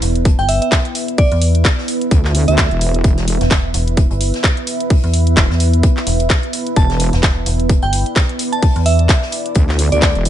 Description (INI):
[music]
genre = bass house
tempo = 129 BPM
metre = 4/4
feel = swing 57% on 16ths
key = unclear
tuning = A4 = 440 Hz
[part]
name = metallic FM bass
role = bass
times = 0.0-9.1 s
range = E1 to E2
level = -15 LUFS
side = equal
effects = overdrive, sidechain pumping
[part]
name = garage drum kit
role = drums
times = 0.0-10.3 s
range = handclaps, hi-hat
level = -20 LUFS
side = equal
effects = none
[part]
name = loose indie drum kit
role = drums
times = 0.0-10.3 s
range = hi-hat, snare drum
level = -30 LUFS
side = left 2 dB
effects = sidechain pumping on hats, high-pass filter on hats, high-pass filter on snare, high-pass filter on room
[part]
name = deep dark ambient pad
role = texture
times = 0.0-10.3 s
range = B3 to E5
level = -22 LUFS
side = right 2 dB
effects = chorus, built-in reverb, sidechain pumping
[part]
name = electronic kick drum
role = drums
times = 0.3-10.1 s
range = none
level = -13 LUFS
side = equal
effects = none
[part]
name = glassy synth bell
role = melody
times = 0.4-2.8, 6.8-10.1 s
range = D5 to A5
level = -21 LUFS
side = right 2 dB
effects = chorus, tape echo
[part]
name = wobble bass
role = bass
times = 2.1-10.3 s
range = E1 to D2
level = -16 LUFS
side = equal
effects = chorus, overdrive, sidechain pumping
[sound]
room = digital ambience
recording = nothing above 10.9 kHz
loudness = -12 LUFS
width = side -11 dB against mid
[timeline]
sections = 0.0-10.3 A section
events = none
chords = 0.0 E5